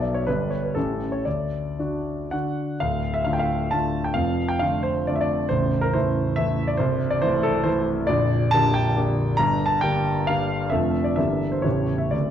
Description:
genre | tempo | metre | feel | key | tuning
classical, romantic triple-time dance for piano with dotted rhythms | 107-146 BPM | 3/4 | rubato | D minor | A4 = 440 Hz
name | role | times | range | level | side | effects
warm grand piano | solo | 0.0-12.3 s | A0 to Bb5 | -21 LUFS | equal | none
room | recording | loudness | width
moderate recital hall reverb, RT60 1.6 s | dark, warm production | -21 LUFS | side -9 dB against mid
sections
0.0-2.8 A section; 2.8-12.3 B section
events
none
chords
0.3 G; 0.8 A7; 1.3 D; 2.8 Dm; 4.2 Dm/F; 5.5 Am; 6.8 Am/C; 8.1 Gm/Bb; 9.4 Gm; 10.7 Dm/F; 11.2 Edim/G; 11.7 A7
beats
0.27 0.76 | 1.26 1.79 2.33 | 2.82 3.28 3.74 | 4.17 4.63 5.09 | 5.51 5.95 6.38 | 6.80 7.23 7.67 | 8.10 8.54 8.97 | 9.39 9.84 10.30 | 10.72 11.17 11.65 | 12.13

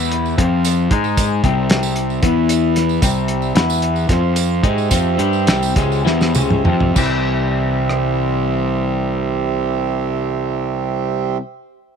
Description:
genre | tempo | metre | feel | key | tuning
psychedelic rock | 193-227 BPM (eighths) | 7/8 | straight | C major | A4 = 438 Hz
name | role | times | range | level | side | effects
hand-pumped harmonium | sustained chords | 0.0-11.4 s | Eb4 to C6 | -23 LUFS | right 14 dB | none
twangy electric guitar | riff | 0.0-11.4 s | C3 to Ab4 | -21 LUFS | left 13 dB | phaser
fuzz picked electric bass | bass | 0.0-11.4 s | C2 to Ab2 | -19 LUFS | right 1 dB | overdrive
cloth-damped thuddy drum kit | drums | 0.1-8.0 s | crash cymbal, hi-hat, kick drum, rim click, snare drum, toms | -18 LUFS | right 1 dB | none
tambourine | percussion | 0.3-7.2 s | none | -28 LUFS | right 16 dB | none
room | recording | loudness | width
studio ambience | 1960s-style stereo with parts hard left and right | -15 LUFS | side -7 dB against mid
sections
0.0-7.0 A section; 7.0-11.3 B section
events
slowing down 3.0-7.0; drum fill 6.1-7.0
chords
0.4 F5; 0.9 Ab5; 1.4 C; 2.2 E5; 3.0 C; 3.6 E5; 4.1 F5; 4.6 C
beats
0.12 0.38 0.64 0.91 | 1.17 1.44 1.70 1.97 2.23 2.50 2.76 | 3.02 3.29 3.55 3.82 4.09 4.36 4.63 | 4.91 5.19 5.47 5.76 6.05 6.35 6.65 | 6.96 7.27 7.58 7.89 8.20 8.51 8.82 | 9.13 9.45 9.76 10.07 10.38 10.69 11.00

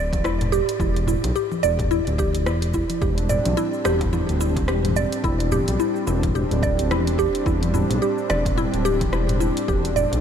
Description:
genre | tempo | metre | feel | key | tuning
organic downtempo | 108 BPM | 4/4 | swing 58% on 16ths | unclear | A4 = 441 Hz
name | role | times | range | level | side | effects
mallet-like synth pluck | arpeggios | 0.0-10.2 s | E4 to D5 | -23 LUFS | right 1 dB | chorus, phaser, tape echo
smooth gliding synth bass | bass | 0.0-10.2 s | D1 to B1 | -24 LUFS | equal | none
deep house drum kit | drums | 0.1-10.2 s | congas, hi-hat, rim click, shaker | -31 LUFS | left 2 dB | overdrive, studio reverb
electronic kick drum | drums | 0.1-9.8 s | none | -27 LUFS | equal | overdrive, studio reverb
darbuka | percussion | 0.1-10.2 s | none | -32 LUFS | left 2 dB | none
warm analog pad | sustained chords | 3.0-10.2 s | G3 to D4 | -27 LUFS | right 1 dB | chorus, sidechain pumping
room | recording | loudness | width
moderate huge ambient reverb, RT60 8.4 s | dreamy mix soaked in reverb | -19 LUFS | side -8 dB against mid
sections
0.0-10.2 A section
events
none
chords
0.0 Em; 3.0 Cadd9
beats
0.24 | 0.80 1.35 1.91 2.46 | 3.02 3.57 4.13 4.68 | 5.24 5.80 6.35 6.91 | 7.46 8.02 8.57 9.13 | 9.69

